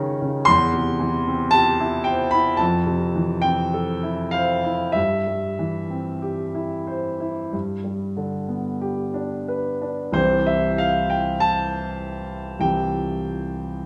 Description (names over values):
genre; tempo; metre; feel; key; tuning
classical, romantic nocturne for solo piano; 43-58 BPM; 4/4; rubato; C major; A4 = 439 Hz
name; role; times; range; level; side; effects
warm grand piano; solo; 0.0-13.9 s; C2 to C6; -23 LUFS; equal; none
room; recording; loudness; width
moderate recital hall reverb, RT60 1.3 s; none; -23 LUFS; mono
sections
0.0-10.2 A section; 10.2-13.9 B section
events
none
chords
0.5 C/E; 2.6 Fmaj7; 5.0 C/G; 7.5 G; 10.2 C